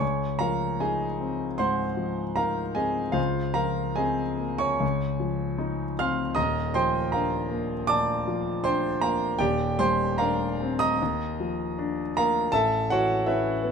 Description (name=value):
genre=classical, impressionist solo piano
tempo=77 BPM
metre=4/4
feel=uneven beats, rubato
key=Db major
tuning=A4 = 441 Hz
part: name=clear grand piano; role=solo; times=0.0-13.7 s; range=Eb1 to F6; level=-24 LUFS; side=equal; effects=none
room=light reverb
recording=none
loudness=-24 LUFS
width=side -6 dB against mid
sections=0.0-13.7 A section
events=none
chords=0.0 Dbmaj9; 3.2 Bbm9/Db; 4.8 Dbmaj9; 6.4 Ebmaj9; 9.4 Cm9/Eb; 11.0 Ebsus2; 12.5 Aadd9